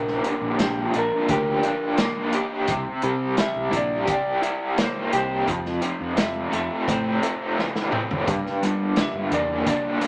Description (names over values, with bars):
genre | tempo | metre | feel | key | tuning
psychedelic rock | 86 BPM | 4/4 | straight | unclear | A4 = 440 Hz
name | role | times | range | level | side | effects
clean lap steel guitar | melody | 0.0-10.1 s | G4 to E5 | -31 LUFS | equal | none
raw garage guitar | riff | 0.0-10.1 s | F2 to G4 | -26 LUFS | equal | overdrive, tremolo
fuzz fingered electric bass | bass | 0.0-9.6 s | Bb1 to G3 | -32 LUFS | equal | overdrive
vintage drum kit | drums | 0.1-10.1 s | hi-hat, kick drum, snare drum, toms | -30 LUFS | equal | none
tonewheel organ | sustained chords | 8.3-10.1 s | G3 to G4 | -38 LUFS | equal | none
room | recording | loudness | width
moderate club reverb, RT60 0.8 s | none | -24 LUFS | mono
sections
0.0-10.1 A section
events
drum fill 7.6-8.3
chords
0.0 Bb6; 2.7 C7; 5.5 Fmaj7; 8.3 Gm